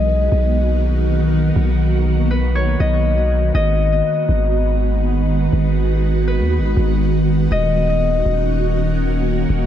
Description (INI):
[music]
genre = hip hop, atmospheric cloud-rap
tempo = 121 BPM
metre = 4/4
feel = half-time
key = G# minor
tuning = A4 = 439 Hz
[part]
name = concert harp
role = melody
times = 0.0-9.5 s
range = B4 to D#5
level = -23 LUFS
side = left 4 dB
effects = low-pass filter, ping-pong delay
[part]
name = ethereal airy pad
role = sustained chords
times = 0.0-9.7 s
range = D#3 to F#4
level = -20 LUFS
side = right 1 dB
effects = ensemble chorus, built-in reverb, phaser
[part]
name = long sustained 808-style bass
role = bass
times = 0.0-9.7 s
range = D#1 to D#2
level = -17 LUFS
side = equal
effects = none
[sound]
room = moderate huge ambient reverb, RT60 7.5 s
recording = dreamy mix soaked in reverb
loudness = -15 LUFS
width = side -10 dB against mid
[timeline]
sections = 0.0-3.5 A section; 3.5-9.7 B section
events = none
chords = 0.0 Bmaj7; 3.5 G#m7; 7.5 D#m7